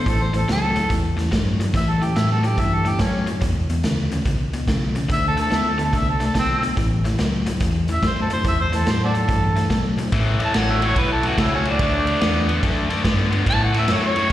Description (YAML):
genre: electric blues shuffle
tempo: 143 BPM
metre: 4/4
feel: swing 66% on 8ths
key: A mixolydian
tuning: A4 = 440 Hz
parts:
  - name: mellow harmonica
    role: melody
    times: 0.0-14.3 s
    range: C4 to A5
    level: -23 LUFS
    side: right 1 dB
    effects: plate reverb, slapback echo
  - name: cranked stack guitar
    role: riff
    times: 0.0-14.3 s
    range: E2 to B3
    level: -24 LUFS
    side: left 4 dB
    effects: overdrive, slapback echo
  - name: vintage muted fingered electric bass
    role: bass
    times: 0.1-14.3 s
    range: A1 to E3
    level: -23 LUFS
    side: right 1 dB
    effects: none
  - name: raw garage drum kit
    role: drums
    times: 0.1-14.3 s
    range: hi-hat, kick drum, ride cymbal, snare drum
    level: -24 LUFS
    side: right 1 dB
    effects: none
room: light reverb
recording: live gig heard through the venue's PA, recital hall reverb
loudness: -18 LUFS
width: side -13 dB against mid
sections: 0.0-10.1 A section; 10.1-14.3 B section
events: harmonica solo 10.1-14.3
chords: 0.1 A7(no3); 3.4 E5; 5.1 D5; 6.8 A7(no3); 10.1 A; 11.8 D; 13.5 A